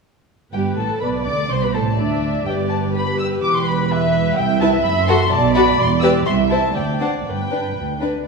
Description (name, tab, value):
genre	quick classical-period movement for string orchestra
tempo	125 BPM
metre	2/4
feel	uneven beats, rubato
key	G major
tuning	A4 = 439 Hz
part	warm studio violin section	melody	0.5-8.0 s	D5 to E6	-22 LUFS	left 3 dB	none
part	warm chamber violin section	second line	0.5-8.1 s	D4 to D5	-22 LUFS	left 3 dB	none
part	warm chamber viola section	accompaniment	0.5-8.0 s	G4 to E5	-24 LUFS	right 3 dB	none
part	dark symphonic double bass section	bass	0.5-8.2 s	E1 to D2	-24 LUFS	right 4 dB	none
part	warm chamber cello section	bass	0.5-8.2 s	C2 to D3	-22 LUFS	right 5 dB	none
room	moderate scoring stage reverb, RT60 2.0 s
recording	studio reverb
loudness	-16 LUFS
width	side -4 dB against mid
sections	0.5-8.3 A section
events	none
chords	0.5 G; 1.5 D5; 2.5 G; 3.4 Em; 4.4 Cmaj7; 4.9 F#dim; 5.3 Bm7; 5.8 Em; 6.3 C; 6.8 D7(no3); 7.3 G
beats	| 0.53 1.02 | 1.51 2.00 | 2.48 2.96 | 3.44 3.92 | 4.39 4.86 | 5.32 5.79 | 6.27 6.76 | 7.26 7.77